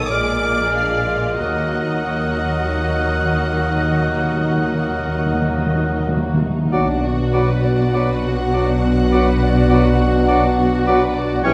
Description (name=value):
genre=classical, slow romantic movement for symphony orchestra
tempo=44-53 BPM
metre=4/4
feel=rubato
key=Eb minor, B minor from 6.7 s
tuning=A4 = 440 Hz
part: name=warm symphonic violin section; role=melody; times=0.0-11.5 s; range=F5 to D#6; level=-32 LUFS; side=equal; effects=none
part: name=clear clarinet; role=second line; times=0.0-11.5 s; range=C#4 to Bb4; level=-30 LUFS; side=equal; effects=none
part: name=mellow concert flute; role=second line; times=0.0-11.5 s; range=F#5 to Gb6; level=-28 LUFS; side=equal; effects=none
part: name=warm studio violin section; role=second line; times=0.0-11.5 s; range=Ab3 to D5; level=-30 LUFS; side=equal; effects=none
part: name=mellow bassoon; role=accompaniment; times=0.0-11.5 s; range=E3 to Ab3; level=-29 LUFS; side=equal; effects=none
part: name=rich symphonic viola section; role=accompaniment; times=0.0-11.5 s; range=E4 to Eb5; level=-30 LUFS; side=equal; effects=none
part: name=rich symphonic double bass section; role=bass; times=0.0-11.5 s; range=Bb1 to Eb2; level=-24 LUFS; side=equal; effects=none
part: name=warm studio cello section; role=bass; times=0.0-11.5 s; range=Bb2 to Eb3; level=-26 LUFS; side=equal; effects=none
part: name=timpani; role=percussion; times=1.4-6.7 s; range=Eb3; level=-26 LUFS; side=equal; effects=none
part: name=bright oboe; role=second line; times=6.7-11.5 s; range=C#5 to D5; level=-30 LUFS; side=equal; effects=none
part: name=dark French horn section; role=sustained chords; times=6.7-11.5 s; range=G3 to D4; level=-26 LUFS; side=equal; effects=none
part: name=warm trombone section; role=sustained chords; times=6.7-11.5 s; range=B2 to F#3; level=-28 LUFS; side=equal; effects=none
part: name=mellow trumpet section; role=stabs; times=6.7-11.5 s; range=F#4 to G4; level=-27 LUFS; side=equal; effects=none
room=wet concert hall reverb, RT60 2.0 s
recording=none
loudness=-18 LUFS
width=mono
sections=0.0-6.7 A section; 6.7-11.5 B section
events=timpani fill 1.4-6.7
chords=0.1 Bb7; 1.4 Ebm; 6.7 Bm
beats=0.11 | 1.40 2.74 4.08 5.42 | 6.72 7.95 9.13 10.29 | 11.45